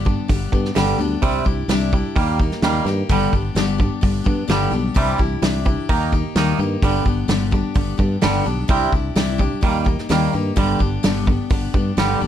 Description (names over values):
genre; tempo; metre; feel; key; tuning
folk rock and heartland rock; 128 BPM; 4/4; straight; G major; A4 = 440 Hz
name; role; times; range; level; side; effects
picked steel-string acoustic guitar; accompaniment; 0.0-12.3 s; G2 to G4; -23 LUFS; left 6 dB; none
twangy electric guitar; riff; 0.0-12.3 s; G2 to Eb4; -23 LUFS; right 6 dB; none
modern bright fingered electric bass; bass; 0.0-12.3 s; E1 to G2; -23 LUFS; equal; none
natural country drum kit; drums; 0.1-12.1 s; hi-hat, kick drum, snare drum; -21 LUFS; equal; none
room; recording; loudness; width
light reverb; dark, warm production; -16 LUFS; side -10 dB against mid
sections
0.0-12.3 A section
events
none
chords
0.0 G; 1.2 Cadd9; 2.2 Eb; 3.1 G; 5.0 Cadd9; 5.9 Eb; 6.8 G; 8.7 Cadd9; 9.6 Eb; 10.6 G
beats
0.30 0.76 | 1.23 1.70 2.16 2.63 | 3.10 3.56 4.03 4.50 | 4.96 5.43 5.90 6.37 | 6.83 7.30 7.77 8.23 | 8.70 9.17 9.64 10.10 | 10.57 11.04 11.51 11.98